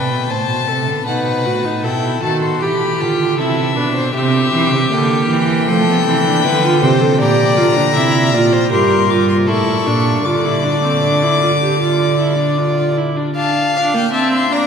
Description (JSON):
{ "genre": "classical, baroque-style fugue for string quartet", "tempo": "78 BPM", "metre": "4/4", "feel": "straight", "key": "D minor", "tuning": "A4 = 441 Hz", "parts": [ { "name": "warm violin", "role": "melody", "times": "0.0-14.7 s", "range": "E5 to D6", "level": "-20 LUFS", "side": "left 8 dB", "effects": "none" }, { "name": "warm violin", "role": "second line", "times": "0.0-14.7 s", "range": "G4 to F5", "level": "-19 LUFS", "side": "left 3 dB", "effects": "none" }, { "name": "rich cello", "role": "bass", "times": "0.0-12.9 s", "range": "G2 to F3", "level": "-18 LUFS", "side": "right 3 dB", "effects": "none" }, { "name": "warm viola", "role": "accompaniment", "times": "1.1-14.7 s", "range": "A3 to A4", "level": "-18 LUFS", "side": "right 2 dB", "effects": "none" } ], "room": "wet cathedral reverb, RT60 7.0 s", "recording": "recorded in a church or concert hall", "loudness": "-13 LUFS", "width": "side -6 dB against mid", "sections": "0.0-1.1 A section; 1.1-13.4 B section; 13.4-14.7 C section", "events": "none", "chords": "0.0 Am; 1.1 B7; 2.6 Em; 4.2 C7; 5.7 F; 7.2 Bb; 8.7 Gmadd11; 9.5 A; 10.3 Dm; 13.4 E7(b5, no3)", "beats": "0.30 | 1.07 1.84 2.62 3.39 | 4.16 4.92 5.68 6.45 | 7.21 7.97 8.72 9.49 | 10.26 11.04 11.81 12.59 | 13.37 14.14" }